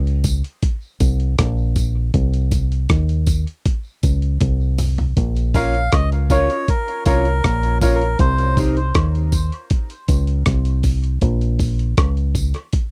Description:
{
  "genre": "dub reggae",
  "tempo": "79 BPM",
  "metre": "4/4",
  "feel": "straight",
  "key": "Bb minor",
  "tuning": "A4 = 440 Hz",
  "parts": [
    { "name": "fingered electric bass", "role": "bass", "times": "0.0-12.5 s", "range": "Bb1 to Eb2", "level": "-20 LUFS", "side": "equal", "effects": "none" },
    { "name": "dusty soul sampler-style drum kit", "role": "drums", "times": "0.1-12.9 s", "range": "hi-hat, kick drum, rim click, toms", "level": "-22 LUFS", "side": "equal", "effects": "none" },
    { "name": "tambourine and woodblock", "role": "percussion", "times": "0.2-12.5 s", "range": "none", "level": "-34 LUFS", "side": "equal", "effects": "high-pass filter on perc, tape echo" },
    { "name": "mellow electric guitar", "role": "accompaniment", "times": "5.5-8.8 s", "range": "C4 to Db5", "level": "-28 LUFS", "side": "equal", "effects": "high-pass filter, tape echo" },
    { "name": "bright upright piano", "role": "stabs", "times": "5.5-8.0 s", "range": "F4 to Db5", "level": "-27 LUFS", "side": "equal", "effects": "tape echo" },
    { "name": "melodica", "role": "melody", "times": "5.6-8.6 s", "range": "Bb4 to F5", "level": "-26 LUFS", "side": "equal", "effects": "tape echo" }
  ],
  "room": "little or no reverb",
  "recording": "dry, close 1970s-style studio recording",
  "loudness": "-19 LUFS",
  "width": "mono",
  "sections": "0.0-5.2 A section; 5.2-12.9 B section",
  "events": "break 0.0-5.2; drum fill 4.4-5.2",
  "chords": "0.0 Bbm; 2.1 Cm; 5.2 Bbm; 8.2 Cm; 11.2 Bbm",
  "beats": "0.62 1.38 | 2.14 2.90 3.65 4.41 | 5.17 5.93 6.68 7.44 | 8.20 8.95 9.71 10.46 | 11.22 11.98 12.73"
}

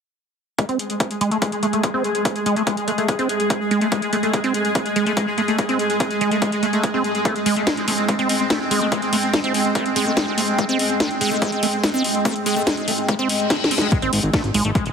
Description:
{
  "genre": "psychedelic trance",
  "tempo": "144 BPM",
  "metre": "4/4",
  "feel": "straight",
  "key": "Ab major",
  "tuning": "A4 = 440 Hz",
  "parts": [
    { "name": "pulsing gated texture", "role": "sustained chords", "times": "0.6-13.9 s", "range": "Ab3 to Ab4", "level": "-23 LUFS", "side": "right 1 dB", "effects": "chorus, built-in reverb, sidechain pumping" },
    { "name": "liquid acid bass", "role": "riff", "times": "0.6-14.8 s", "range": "Ab3 to C4", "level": "-23 LUFS", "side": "right 1 dB", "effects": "phaser, auto-pan, sidechain pumping, digital delay" },
    { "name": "electronic kick drum", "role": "drums", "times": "0.6-14.8 s", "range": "none", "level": "-22 LUFS", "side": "equal", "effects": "high-pass filter on kick, high-pass filter on room" },
    { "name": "techno drum kit", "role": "drums", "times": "0.6-14.9 s", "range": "hi-hat, snare drum", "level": "-24 LUFS", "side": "left 1 dB", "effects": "none" },
    { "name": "airy breathy pad", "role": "texture", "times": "2.0-13.9 s", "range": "Ab3 to Eb6", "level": "-28 LUFS", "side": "equal", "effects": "chorus, sidechain pumping" },
    { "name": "reverse cymbal", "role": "sound effects", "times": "13.3-13.9 s", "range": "none", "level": "-28 LUFS", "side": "left 6 dB", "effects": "none" },
    { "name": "fat analog bass", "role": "bass", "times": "14.0-14.9 s", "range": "Eb1 to Ab1", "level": "-22 LUFS", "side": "equal", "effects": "none" }
  ],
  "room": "moderate lush hall reverb, RT60 1.8 s, digital ambience",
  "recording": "heavily compressed radio sound, multiband compression",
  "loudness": "-18 LUFS",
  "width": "side -6 dB against mid",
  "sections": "0.6-13.9 A section; 13.9-14.9 B section",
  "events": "fade-in on analog synth pad 0.6-13.9; filter sweep on acid bass 0.6-13.9; reverse cymbal 13.3-13.9; drum fill 13.5-13.9",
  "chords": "0.6 Ab5",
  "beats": "| 0.58 1.00 1.42 1.83 | 2.25 2.67 3.08 3.50 | 3.92 4.33 4.75 5.17 | 5.58 6.00 6.42 6.83 | 7.25 7.67 8.09 8.50 | 8.92 9.34 9.75 10.17 | 10.59 11.00 11.42 11.84 | 12.25 12.67 13.09 13.50 | 13.92 14.34 14.75"
}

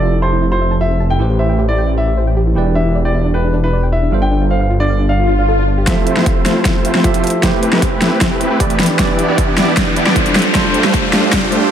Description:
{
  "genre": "future bass",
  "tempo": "154 BPM",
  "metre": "4/4",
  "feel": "half-time",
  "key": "F lydian",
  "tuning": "A4 = 441 Hz",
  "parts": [
    { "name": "warm grand piano", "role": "melody", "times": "0.0-5.3 s", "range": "B4 to G5", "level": "-20 LUFS", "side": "left 1 dB", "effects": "sidechain pumping, dub echo" },
    { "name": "bright tine electric piano", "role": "accompaniment", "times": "0.0-11.7 s", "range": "E3 to E5", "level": "-20 LUFS", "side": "right 4 dB", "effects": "medium stereo tremolo, sidechain pumping, ping-pong delay" },
    { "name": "soft round pluck", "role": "arpeggios", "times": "0.0-11.7 s", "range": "D4 to A5", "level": "-24 LUFS", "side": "right 2 dB", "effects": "chorus, sidechain pumping, ping-pong delay" },
    { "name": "wide detuned saw bass", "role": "bass", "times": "0.0-5.9 s", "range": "E1 to A1", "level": "-15 LUFS", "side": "equal", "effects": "chorus, sidechain pumping" },
    { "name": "swell and riser", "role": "sound effects", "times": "5.2-11.7 s", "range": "none", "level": "-21 LUFS", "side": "left 2 dB", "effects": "none" },
    { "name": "supersaw chords", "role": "riff", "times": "5.9-11.7 s", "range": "A3 to D5", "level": "-17 LUFS", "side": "equal", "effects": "cassette tape, sidechain pumping, low-pass filter, ping-pong delay" },
    { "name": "big-room dance drum kit", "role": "drums", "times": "5.9-11.6 s", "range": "hi-hat, snare drum", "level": "-16 LUFS", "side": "equal", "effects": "overdrive" },
    { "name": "electronic kick drum", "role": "drums", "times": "5.9-11.4 s", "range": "none", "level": "-18 LUFS", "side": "equal", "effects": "overdrive" }
  ],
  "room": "light reverb",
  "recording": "none",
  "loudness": "-12 LUFS",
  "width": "side -9 dB against mid",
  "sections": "0.0-5.9 A section; 5.9-11.7 B section",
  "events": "swell 5.2-5.9; build-up 5.9-11.7; drum fill 5.9-11.7; riser 5.9-11.7; filter sweep on supersaw synth 5.9-11.7; filter sweep 5.9-11.7",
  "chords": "0.0 Fmaj7; 1.2 Am9; 2.6 Em7; 4.1 G9sus4; 5.9 Fmaj7; 7.4 Am9; 8.8 Em7; 10.4 G9sus4",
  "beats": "0.03 0.42 0.81 | 1.20 1.59 1.98 2.37 | 2.76 3.15 3.54 3.93 | 4.32 4.71 5.09 5.48 | 5.87 6.26 6.65 7.04 | 7.43 7.82 8.21 8.60 | 8.99 9.38 9.77 10.16 | 10.55 10.94 11.33"
}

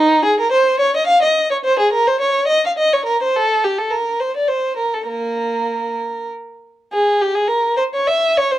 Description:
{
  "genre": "classical, baroque-style suite movement for unaccompanied violin",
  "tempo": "97-108 BPM",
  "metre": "3/4",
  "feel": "rubato",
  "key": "Bb minor",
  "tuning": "A4 = 440 Hz",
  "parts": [
    { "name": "warm violin", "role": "solo", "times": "0.0-8.6 s", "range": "Bb3 to F5", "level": "-15 LUFS", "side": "equal", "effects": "none" }
  ],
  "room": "light reverb",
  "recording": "dark, warm production",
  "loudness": "-15 LUFS",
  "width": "side -14 dB against mid",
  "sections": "0.0-6.9 A section; 6.9-8.6 A section",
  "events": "none",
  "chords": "none",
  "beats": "0.53 1.09 | 1.66 2.22 2.79 | 3.35 3.92 4.50 | 5.11 5.72 6.32 | 6.93 7.51 8.09"
}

